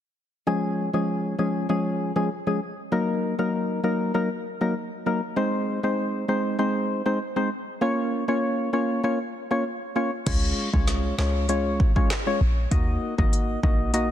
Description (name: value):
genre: dancehall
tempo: 98 BPM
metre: 4/4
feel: straight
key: Db major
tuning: A4 = 439 Hz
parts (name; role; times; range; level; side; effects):
- percussive organ stab; accompaniment; 0.5-14.1 s; F3 to Eb5; -24 LUFS; left 1 dB; chorus, sidechain pumping
- short 808-style bass; bass; 10.3-14.1 s; Ab1 to Eb2; -25 LUFS; equal; none
- afro-pop drum kit; drums; 10.3-14.1 s; crash cymbal, handclaps, hi-hat, kick drum, rim click, snare drum; -24 LUFS; equal; vintage 12-bit sampler grit, soft clipping on snare
room: light reverb, digital ambience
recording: dense, heavily limited modern master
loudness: -22 LUFS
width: side -10 dB against mid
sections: 0.5-10.3 A section; 10.3-14.1 B section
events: none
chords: 0.5 Db; 2.9 Ebm; 5.4 Ab; 7.8 Bbm; 10.3 Db; 12.7 Ebm